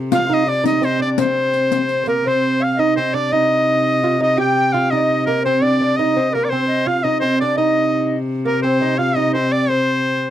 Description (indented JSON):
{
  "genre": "medieval dance",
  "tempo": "113 BPM (dotted quarters)",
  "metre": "6/8",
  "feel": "straight",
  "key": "C minor",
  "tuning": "A4 = 442 Hz",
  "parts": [
    { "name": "warm viola da gamba", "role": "drone", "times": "0.0-10.3 s", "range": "C3", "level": "-23 LUFS", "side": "left 2 dB", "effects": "stereo widening" },
    { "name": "bright reedy alto recorder", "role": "second line", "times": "0.1-10.3 s", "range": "Bb4 to G5", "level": "-22 LUFS", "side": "left 4 dB", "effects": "none" },
    { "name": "lute", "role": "second line", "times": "0.1-10.3 s", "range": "Bb3 to G4", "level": "-21 LUFS", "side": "right 5 dB", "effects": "none" },
    { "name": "riq", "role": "percussion", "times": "0.1-2.2 s", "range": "none", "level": "-22 LUFS", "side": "left 13 dB", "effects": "none" },
    { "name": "edgy shawm", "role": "melody", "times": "0.2-10.3 s", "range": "Bb4 to G5", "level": "-19 LUFS", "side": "equal", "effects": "none" }
  ],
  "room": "moderate studio reverb, RT60 0.5 s",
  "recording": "dry, close 1970s-style studio recording",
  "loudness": "-15 LUFS",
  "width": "side -11 dB against mid",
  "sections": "0.0-2.2 A section; 2.2-10.3 B section",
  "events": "none",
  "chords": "none"
}